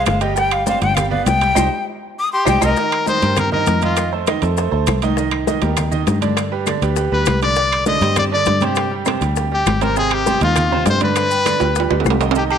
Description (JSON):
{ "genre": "latin, salsa", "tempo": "200 BPM", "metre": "4/4", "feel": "straight", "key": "C minor", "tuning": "A4 = 440 Hz", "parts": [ { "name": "breathy bright jazz flute", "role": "melody", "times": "0.0-2.8 s", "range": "Eb5 to Eb6", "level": "-19 LUFS", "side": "left 3 dB", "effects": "none" }, { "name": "bright grand piano", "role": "accompaniment", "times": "0.0-12.6 s", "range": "C3 to G5", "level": "-22 LUFS", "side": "right 9 dB", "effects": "none" }, { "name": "fingered electric bass", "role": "bass", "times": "0.0-12.6 s", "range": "G1 to G2", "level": "-21 LUFS", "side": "left 1 dB", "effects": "none" }, { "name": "bongos", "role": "percussion", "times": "0.1-12.4 s", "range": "none", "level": "-26 LUFS", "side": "left 13 dB", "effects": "none" }, { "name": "claves", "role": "percussion", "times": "0.1-12.6 s", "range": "none", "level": "-30 LUFS", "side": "left 15 dB", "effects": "none" }, { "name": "congas", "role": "percussion", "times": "0.1-12.6 s", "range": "none", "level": "-25 LUFS", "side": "left 2 dB", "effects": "none" }, { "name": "maracas", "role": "percussion", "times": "0.1-12.5 s", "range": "none", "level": "-31 LUFS", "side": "left 13 dB", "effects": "none" }, { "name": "timbales and agogo bells", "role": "percussion", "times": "0.1-12.6 s", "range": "none", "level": "-24 LUFS", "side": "right 12 dB", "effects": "none" }, { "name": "brilliant trumpet", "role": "melody", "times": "2.3-4.1, 7.1-12.6 s", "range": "F4 to Eb5", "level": "-19 LUFS", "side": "left 3 dB", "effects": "tape echo" } ], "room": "moderate echo chamber reverb, RT60 1.8 s, small room ambience", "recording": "1960s-style stereo with parts hard left and right", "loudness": "-15 LUFS", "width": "side -8 dB against mid", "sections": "0.0-2.8 A section; 2.8-12.4 B section", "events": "flute solo 0.0-2.8; drum fill 1.6-2.8, 11.6-12.4; band accent 1.6-2.8", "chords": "0.4 Gsus4; 1.0 G; 1.6 Cm; 2.8 Cm7; 4.0 F7; 5.2 Cm7; 6.4 G; 7.6 Cmadd9; 8.8 Gsus4; 10.0 Ab6; 11.2 G" }